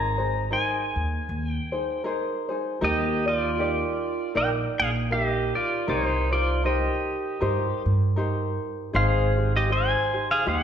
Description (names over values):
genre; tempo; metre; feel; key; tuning
Hawaiian; 78 BPM; 4/4; swing 57% on 8ths; Eb major; A4 = 439 Hz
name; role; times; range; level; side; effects
pedal steel guitar; melody; 0.0-10.6 s; Eb4 to Bb5; -26 LUFS; equal; none
tenor ukulele; accompaniment; 0.0-10.6 s; Eb4 to D5; -28 LUFS; left 1 dB; none
upright bass; bass; 0.0-10.6 s; Ab1 to G2; -27 LUFS; right 1 dB; none
room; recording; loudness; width
wet large studio reverb, RT60 1.4 s; band playing live in one room; -22 LUFS; side -8 dB against mid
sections
0.0-2.8 A section; 2.8-10.6 B section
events
none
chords
0.0 Abadd9; 2.8 Ebmaj7; 5.9 Cm7; 8.9 Abmaj7